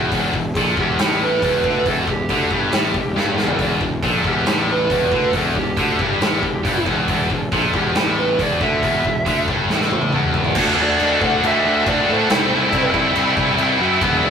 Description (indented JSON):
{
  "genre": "heavy metal",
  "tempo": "138 BPM",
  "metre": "4/4",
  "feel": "straight",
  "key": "E minor",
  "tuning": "A4 = 440 Hz",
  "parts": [
    { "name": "heavy high-gain guitar", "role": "riff", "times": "0.0-14.3 s", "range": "E2 to F#4", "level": "-21 LUFS", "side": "left 7 dB", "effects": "distortion" },
    { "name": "heavy high-gain guitar", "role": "riff", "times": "0.0-14.3 s", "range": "E2 to E4", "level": "-22 LUFS", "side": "right 8 dB", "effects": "distortion" },
    { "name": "fuzz picked electric bass", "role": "bass", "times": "0.0-14.3 s", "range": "E1 to A2", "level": "-24 LUFS", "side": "equal", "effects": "overdrive" },
    { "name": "big rock drum kit", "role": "drums", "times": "0.1-14.1 s", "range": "china cymbal, crash cymbal, hi-hat, kick drum, snare drum, toms", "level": "-22 LUFS", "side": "equal", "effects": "none" },
    { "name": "dark smooth lead guitar", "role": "melody", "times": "0.6-14.3 s", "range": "G4 to F#5", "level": "-22 LUFS", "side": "right 2 dB", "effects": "overdrive" },
    { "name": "high-gain lead guitar", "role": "second line", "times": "10.8-14.3 s", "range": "A4 to D5", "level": "-30 LUFS", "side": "right 3 dB", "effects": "none" }
  ],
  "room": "moderate studio ambience, RT60 0.5 s",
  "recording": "rough rehearsal-room recording, warm saturation",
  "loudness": "-15 LUFS",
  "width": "side -7 dB against mid",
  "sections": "0.0-10.6 A section; 10.6-14.3 B section",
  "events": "drum fill 3.2-3.6, 9.7-10.6; half time 10.6-14.3",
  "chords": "0.0 Em; 10.6 D; 12.3 Am/C"
}